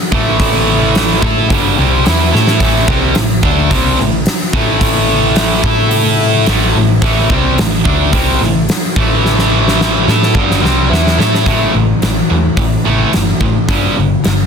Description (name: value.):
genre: hard rock.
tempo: 108 BPM.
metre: 4/4.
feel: straight.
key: unclear.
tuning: A4 = 438 Hz.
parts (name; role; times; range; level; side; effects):
distorted electric guitar; riff; 0.1-14.5 s; G2 to A4; -16 LUFS; left 11 dB; distortion.
tight distorted guitar; riff; 0.1-14.5 s; G2 to A4; -15 LUFS; right 15 dB; distortion.
hollow-body short-scale picked electric bass; bass; 0.1-14.4 s; G1 to A2; -16 LUFS; equal; none.
huge arena drum kit; drums; 0.1-14.4 s; hi-hat, kick drum, snare drum; -15 LUFS; equal; none.
room: light reverb, small room ambience.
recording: dense, heavily limited modern master.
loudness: -10 LUFS.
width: side -6 dB against mid.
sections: 0.0-11.5 A section; 11.5-14.5 B section.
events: drum fill 2.3, 9.2-11.5.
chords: 0.0 A5; 13.7 G5.